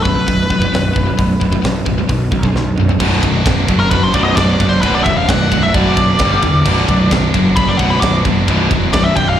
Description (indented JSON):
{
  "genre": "heavy metal",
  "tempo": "132 BPM",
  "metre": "4/4",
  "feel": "straight",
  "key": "B minor",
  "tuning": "A4 = 441 Hz",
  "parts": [
    { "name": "nasal lead guitar with a parked wah", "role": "melody", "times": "0.0-9.4 s", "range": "A#4 to D6", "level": "-18 LUFS", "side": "left 1 dB", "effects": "overdrive, slapback echo, digital delay" },
    { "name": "tight distorted guitar", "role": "riff", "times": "0.0-9.4 s", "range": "B1 to G3", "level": "-20 LUFS", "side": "left 8 dB", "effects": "distortion" },
    { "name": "tight distorted guitar", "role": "riff", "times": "0.0-9.4 s", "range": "B1 to G3", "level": "-20 LUFS", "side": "right 8 dB", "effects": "distortion, slapback echo" },
    { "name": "fuzz picked electric bass", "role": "bass", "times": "0.0-9.4 s", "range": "B0 to E2", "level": "-17 LUFS", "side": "equal", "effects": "overdrive" },
    { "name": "tight metal drum kit", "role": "drums", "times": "0.1-9.3 s", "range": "crash cymbal, hi-hat, kick drum, ride cymbal, snare drum, toms", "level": "-18 LUFS", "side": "equal", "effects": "none" },
    { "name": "heavy high-gain guitar", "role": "riff", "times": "3.0-9.4 s", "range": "B1 to D4", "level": "-20 LUFS", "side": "equal", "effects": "distortion, slapback echo" }
  ],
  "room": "little or no reverb",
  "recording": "live gig heard through the venue's PA, recital hall reverb",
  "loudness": "-11 LUFS",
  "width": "side -10 dB against mid",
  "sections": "0.0-3.0 A section; 3.0-9.4 B section",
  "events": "drum fill 2.5-3.0; lead electric guitar solo 3.0-9.4",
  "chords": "0.0 B5; 3.0 Bm; 6.2 G5; 6.7 Bm",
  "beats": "0.28 0.73 | 1.18 1.64 2.09 2.55 | 3.00 3.46 3.92 4.37 | 4.83 5.28 5.74 6.20 | 6.65 7.11 7.57 8.02 | 8.48 8.94 9.40"
}